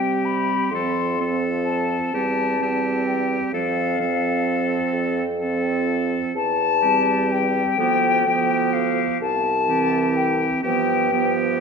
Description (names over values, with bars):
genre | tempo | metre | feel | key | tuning
classical, slow romantic movement for wind quintet | 42 BPM (dotted quarters) | 6/8 | rubato | C major | A4 = 437 Hz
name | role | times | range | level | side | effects
silver concert flute | melody | 0.0-11.3 s | F5 to C6 | -22 LUFS | left 8 dB | none
bright oboe | second line | 0.0-11.6 s | G4 to A4 | -28 LUFS | left 3 dB | none
warm French horn | accompaniment | 0.0-11.6 s | E3 to G3 | -28 LUFS | equal | none
warm clarinet | accompaniment | 0.0-11.6 s | B3 to C4 | -25 LUFS | right 7 dB | none
dark bassoon | bass | 0.0-11.6 s | C2 to C3 | -26 LUFS | right 3 dB | none
room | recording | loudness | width
wet scoring stage reverb, RT60 1.7 s | none | -19 LUFS | side -5 dB against mid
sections
0.0-11.6 A section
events
none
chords
0.0 C5; 0.7 F; 2.1 C/E; 3.5 F; 6.3 C/E; 7.8 G7/D; 9.2 C; 10.6 G7